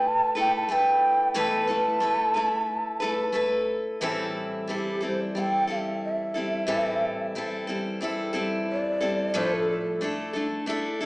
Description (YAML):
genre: acoustic folk duo or small band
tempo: 90 BPM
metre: 4/4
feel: straight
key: A minor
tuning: A4 = 440 Hz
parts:
  - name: mellow hollow shakuhachi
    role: melody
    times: 0.0-10.0 s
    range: G4 to A5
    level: -25 LUFS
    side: equal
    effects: none
  - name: picked steel-string acoustic guitar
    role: accompaniment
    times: 0.0-11.1 s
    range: A2 to B4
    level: -27 LUFS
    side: left 1 dB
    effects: none
room: wet recital hall reverb, RT60 1.6 s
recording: recorded in a church or concert hall, small speaker sound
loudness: -24 LUFS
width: side -23 dB against mid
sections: 0.0-4.0 A section; 4.0-11.1 B section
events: shakuhachi solo 4.0-11.1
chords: 0.0 Esus4; 4.0 Am7; 9.3 Dmadd9/A